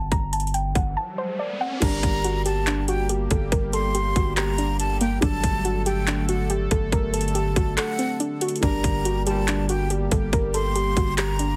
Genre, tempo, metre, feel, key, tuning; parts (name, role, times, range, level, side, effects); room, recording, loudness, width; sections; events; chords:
hip hop, trap; 141 BPM; 4/4; half-time; G harmonic minor; A4 = 440 Hz
soft round pluck; melody; 0.0-11.6 s; Bb3 to Bb5; -30 LUFS; equal; chorus
long sustained 808-style bass; bass; 0.0-11.6 s; G1; -28 LUFS; equal
trap drum kit; drums; 0.1-11.5 s; crash cymbal, handclaps, hi-hat, kick drum; -28 LUFS; equal; overdrive
riser; sound effects; 0.7-1.8 s; -37 LUFS; equal
breathy mellow silver concert flute; second line; 1.8-11.6 s; F#5 to C6; -32 LUFS; equal; digital delay
dark concert grand piano; accompaniment; 1.8-11.6 s; F#3 to D5; -37 LUFS; equal
warm analog pad; sustained chords; 1.8-11.6 s; D3 to A4; -34 LUFS; equal; chorus
warm brass ensemble; stabs; 9.3-9.7 s; D2 to G3; -31 LUFS; equal
little or no reverb; heavily compressed radio sound, multiband compression; -23 LUFS; mono
0.0-1.8 A section; 1.8-11.6 B section
riser 0.7-1.8; break 1.0-1.8; kick muted 7.8-8.6
0.0 G5; 1.8 Gm; 5.2 D/G; 8.6 Gm